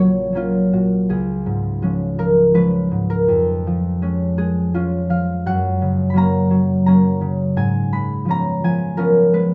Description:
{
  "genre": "classical, solo harp piece",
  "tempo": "84 BPM",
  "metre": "3/4",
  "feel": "rubato",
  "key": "unclear",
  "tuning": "A4 = 442 Hz",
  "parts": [
    { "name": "concert harp", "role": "solo", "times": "0.0-9.5 s", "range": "A#1 to B5", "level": "-18 LUFS", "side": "equal", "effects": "none" }
  ],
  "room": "moderate large studio reverb, RT60 1.2 s",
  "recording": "none",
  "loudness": "-18 LUFS",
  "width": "mono",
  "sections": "0.0-9.5 A section",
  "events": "none",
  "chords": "0.0 F#/A#; 1.1 C#; 3.3 C#/E#; 5.5 F#; 7.6 C#7/G#"
}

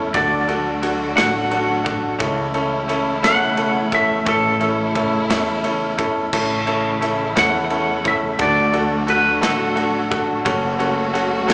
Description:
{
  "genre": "six-eight pop ballad",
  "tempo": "58 BPM (dotted quarters)",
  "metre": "6/8",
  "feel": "straight",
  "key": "A major",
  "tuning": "A4 = 440 Hz",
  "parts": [
    { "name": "bright upright piano", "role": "accompaniment", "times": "0.0-11.5 s", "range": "C#4 to A4", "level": "-20 LUFS", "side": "equal", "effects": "plate reverb, slapback echo" },
    { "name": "warm studio string section", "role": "sustained chords", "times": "0.0-11.5 s", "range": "C#3 to F#4", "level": "-24 LUFS", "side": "equal", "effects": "plate reverb" },
    { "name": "upright bass", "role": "bass", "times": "0.0-11.5 s", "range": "E1 to E2", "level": "-27 LUFS", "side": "equal", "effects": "none" },
    { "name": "clean lap steel guitar", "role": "melody", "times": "0.1-10.2 s", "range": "A4 to F#5", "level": "-19 LUFS", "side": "equal", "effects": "plate reverb, slapback echo, digital delay" },
    { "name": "modern studio drum kit", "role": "drums", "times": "0.1-11.5 s", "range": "crash cymbal, kick drum, ride cymbal, snare drum", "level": "-26 LUFS", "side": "equal", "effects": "none" }
  ],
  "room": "moderate club reverb, RT60 0.7 s",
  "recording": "live gig heard through the venue's PA, club reverb, small speaker sound",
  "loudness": "-16 LUFS",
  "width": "side -36 dB against mid",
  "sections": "0.0-6.3 A section; 6.3-11.5 A section",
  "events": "none",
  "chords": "0.1 D; 2.2 A/C#; 4.3 A; 8.4 D; 10.5 F#m"
}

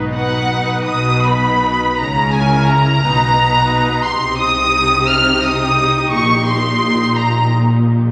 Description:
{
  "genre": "classical, slow romantic movement for string orchestra",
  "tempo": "53-60 BPM (dotted quarters)",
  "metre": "6/8",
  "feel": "rubato",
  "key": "unclear",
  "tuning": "A4 = 442 Hz",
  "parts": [
    { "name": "clear studio viola section", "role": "accompaniment", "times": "0.0-8.1 s", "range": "D#4 to B4", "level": "-25 LUFS", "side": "equal", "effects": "none" },
    { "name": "rich studio cello section", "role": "bass", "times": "0.0-8.1 s", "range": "Bb2 to C#3", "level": "-21 LUFS", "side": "equal", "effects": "none" },
    { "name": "rich studio double bass section", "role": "bass", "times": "0.0-8.1 s", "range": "Bb1 to C#2", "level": "-23 LUFS", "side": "equal", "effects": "none" },
    { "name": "clear studio violin section", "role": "melody", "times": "0.1-7.5 s", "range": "F#5 to F6", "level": "-19 LUFS", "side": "equal", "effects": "none" },
    { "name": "rich studio violin section", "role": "second line", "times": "0.1-7.5 s", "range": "F#5 to F6", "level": "-24 LUFS", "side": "equal", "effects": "none" }
  ],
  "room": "wet recital hall reverb, RT60 1.6 s",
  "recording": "none",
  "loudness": "-15 LUFS",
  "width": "mono",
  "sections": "0.0-8.1 A section",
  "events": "none",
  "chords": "0.0 B; 2.0 A#dim/C#; 3.0 B; 4.1 Cm; 6.1 Eb/Bb"
}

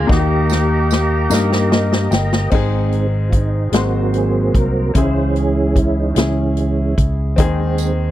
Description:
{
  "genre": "slow gospel",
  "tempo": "49 BPM (dotted quarters)",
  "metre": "6/8",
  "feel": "straight",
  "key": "Ab major",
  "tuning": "A4 = 436 Hz",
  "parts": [
    { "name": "mellow horn section", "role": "melody", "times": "0.0-2.1 s", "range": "Bb3 to G4", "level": "-21 LUFS", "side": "equal", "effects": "none" },
    { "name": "clear grand piano", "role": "accompaniment", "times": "0.0-8.1 s", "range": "Ab2 to G5", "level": "-22 LUFS", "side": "left 5 dB", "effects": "none" },
    { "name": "tonewheel organ", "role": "sustained chords", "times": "0.0-7.9 s", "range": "Eb3 to Bb5", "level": "-21 LUFS", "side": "right 4 dB", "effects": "slow rotary speaker, chorus vibrato" },
    { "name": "fingered electric bass", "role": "bass", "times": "0.0-8.1 s", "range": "G1 to G2", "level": "-18 LUFS", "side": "equal", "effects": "none" },
    { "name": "swinging big-band drum kit", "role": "drums", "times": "0.1-8.0 s", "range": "crash cymbal, hi-hat, kick drum, snare drum", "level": "-18 LUFS", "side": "equal", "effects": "none" },
    { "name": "tambourine", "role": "percussion", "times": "0.5-2.5, 7.8-8.1 s", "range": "none", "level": "-29 LUFS", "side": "right 23 dB", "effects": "none" },
    { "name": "mellow French horn section", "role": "sustained chords", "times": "2.5-8.1 s", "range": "C4 to Fb5", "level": "-31 LUFS", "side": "right 2 dB", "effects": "none" }
  ],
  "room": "little or no reverb",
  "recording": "dry, close 1970s-style studio recording",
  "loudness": "-14 LUFS",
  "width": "side -13 dB against mid",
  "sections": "0.0-2.5 A section; 2.5-8.1 B section",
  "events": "drum fill 0.1-2.5; grand piano fill 1.3-2.5; tonewheel organ solo 2.5-8.1",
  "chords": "0.1 Eb; 2.5 Ab; 3.7 Ab7; 4.9 Dbm; 7.4 Ab/Eb"
}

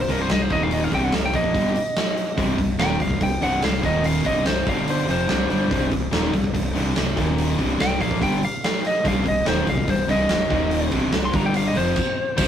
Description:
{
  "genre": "hard rock",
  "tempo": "144 BPM",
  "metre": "4/4",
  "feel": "straight",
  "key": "C minor",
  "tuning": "A4 = 440 Hz",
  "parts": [
    { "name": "lightly driven lead guitar", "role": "melody", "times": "0.0-12.5 s", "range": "Bb4 to C6", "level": "-25 LUFS", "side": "equal", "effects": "tape echo" },
    { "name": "overdriven semi-hollow guitar", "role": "riff", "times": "0.0-12.5 s", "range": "C2 to Bb3", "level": "-25 LUFS", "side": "right 2 dB", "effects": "none" },
    { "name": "tight distorted guitar", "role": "riff", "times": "0.0-12.5 s", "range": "C2 to Bb3", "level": "-29 LUFS", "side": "left 5 dB", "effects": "distortion" },
    { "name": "fuzz fingered electric bass", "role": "bass", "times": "0.0-12.5 s", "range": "C1 to Bb1", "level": "-27 LUFS", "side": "equal", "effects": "overdrive" },
    { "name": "big rock drum kit", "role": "drums", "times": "0.1-12.5 s", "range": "crash cymbal, hi-hat, kick drum, snare drum", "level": "-24 LUFS", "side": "equal", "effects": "none" }
  ],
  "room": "light reverb",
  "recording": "rough rehearsal-room recording, tube saturation",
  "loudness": "-19 LUFS",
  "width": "side -9 dB against mid",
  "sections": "0.0-12.4 A section",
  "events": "lead electric guitar solo 0.0-12.4; stop 12.0-12.4",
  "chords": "0.0 Cm; 0.5 Eb5; 0.9 Cm; 3.8 Eb5; 4.2 Cm; 4.7 G5; 5.1 Cm; 7.2 Eb5; 7.6 Cm; 10.5 Eb5; 10.9 C5; 11.3 G5; 11.8 F5"
}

